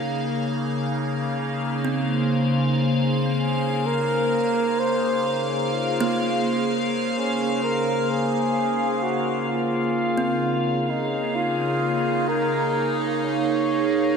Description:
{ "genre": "ambient", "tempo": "64 BPM", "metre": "4/4", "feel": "straight", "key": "Bb minor", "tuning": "A4 = 440 Hz", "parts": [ { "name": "evolving wavetable pad", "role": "sustained chords", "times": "0.0-14.2 s", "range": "Db3 to F5", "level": "-23 LUFS", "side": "equal", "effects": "phaser, built-in reverb" }, { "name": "kalimba", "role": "arpeggios", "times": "1.8-12.0 s", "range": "Bb3 to C4", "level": "-31 LUFS", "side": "right 4 dB", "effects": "analog delay" }, { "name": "glass harmonica", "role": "texture", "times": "2.0-9.5 s", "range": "C5 to C6", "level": "-32 LUFS", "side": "left 6 dB", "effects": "none" }, { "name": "mellow flugelhorn", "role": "melody", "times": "3.4-14.2 s", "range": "Db4 to Db5", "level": "-25 LUFS", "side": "equal", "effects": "analog delay" }, { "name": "pedal harmonium", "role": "drone", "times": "9.5-14.2 s", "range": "Bb3", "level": "-33 LUFS", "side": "equal", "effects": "none" } ], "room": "wet lush hall reverb, RT60 2.8 s", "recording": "dreamy mix soaked in reverb", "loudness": "-21 LUFS", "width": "side -6 dB against mid", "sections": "0.0-9.5 A section; 9.5-14.2 B section", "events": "none", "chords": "0.0 Bbmadd9", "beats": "0.14 1.07 | 2.01 2.95 3.88 4.82 | 5.76 6.70 7.63 8.57 | 9.51 10.45 11.38 12.32 | 13.26" }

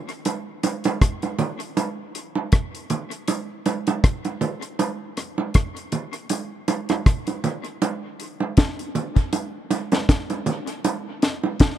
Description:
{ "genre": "reggae", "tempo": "79 BPM", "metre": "4/4", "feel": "swing 55% on 16ths", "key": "none", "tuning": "none", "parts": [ { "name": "deep reggae drum kit", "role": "drums", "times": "0.1-11.8 s", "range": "hi-hat, kick drum, rim click, snare drum", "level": "-20 LUFS", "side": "left 1 dB", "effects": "dub echo" }, { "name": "bongos", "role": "percussion", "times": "0.3-11.6 s", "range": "none", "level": "-25 LUFS", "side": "right 5 dB", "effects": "none" } ], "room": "light reverb", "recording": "dark, warm production", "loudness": "-22 LUFS", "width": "side -11 dB against mid", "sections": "0.0-11.8 A section", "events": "none", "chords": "none", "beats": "0.26 1.02 | 1.77 2.53 3.28 4.04 | 4.79 5.55 6.31 7.06 | 7.82 8.57 9.33 10.09 | 10.85 11.60" }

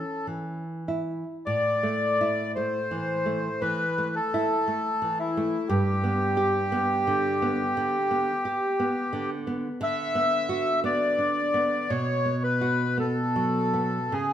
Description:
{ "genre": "romantic duo for bandoneon and classical guitar", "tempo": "57 BPM", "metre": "4/4", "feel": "uneven beats, rubato", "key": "A minor", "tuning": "A4 = 440 Hz", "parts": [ { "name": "bandoneon", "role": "melody", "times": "0.0-14.3 s", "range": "E4 to E5", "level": "-25 LUFS", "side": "left 1 dB", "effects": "none" }, { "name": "nylon-string guitar", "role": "accompaniment", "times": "0.0-14.3 s", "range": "G2 to G4", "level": "-28 LUFS", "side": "right 2 dB", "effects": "none" } ], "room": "wet stone room reverb, RT60 1.3 s", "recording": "band playing live in one room", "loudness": "-24 LUFS", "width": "side -10 dB against mid", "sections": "0.0-1.5 A section; 1.5-14.3 B section", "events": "none", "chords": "0.0 A; 1.5 Am; 5.7 G; 9.8 Bm/D; 11.9 B5", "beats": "0.26 | 1.45 2.56 3.62 4.68 | 5.69 6.71 7.75 8.79 | 9.81 10.83 11.89 12.97 | 14.13" }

